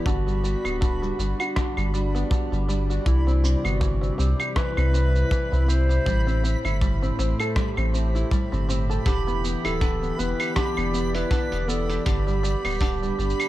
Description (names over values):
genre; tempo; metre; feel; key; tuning
folktronica; 80 BPM; 4/4; swing 56% on 16ths; unclear; A4 = 440 Hz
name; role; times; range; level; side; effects
dark clarinet; melody; 0.0-13.5 s; E4 to C5; -30 LUFS; equal; digital delay
warm analog pad; sustained chords; 0.0-13.5 s; A2 to F#5; -31 LUFS; left 1 dB; chorus
open-back banjo; arpeggios; 0.0-13.5 s; D3 to A4; -31 LUFS; right 1 dB; low-pass filter, digital delay
backwards swelling texture; texture; 0.0-13.5 s; B5; -37 LUFS; right 3 dB; built-in reverb
warm sub bass; bass; 0.1-13.3 s; D1 to C2; -24 LUFS; equal; none
kick drum; drums; 0.1-13.0 s; none; -25 LUFS; equal; none
lo-fi sampler-style drum kit; drums; 0.1-13.5 s; cabasa, claves, hi-hat, rim click; -31 LUFS; right 2 dB; none
room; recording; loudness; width
small room reverb; dark, warm production; -21 LUFS; side -15 dB against mid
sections
0.0-13.5 A section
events
none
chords
0.1 Gmaj7; 3.1 Cmaj7; 6.1 Am7; 9.1 Em7; 12.1 G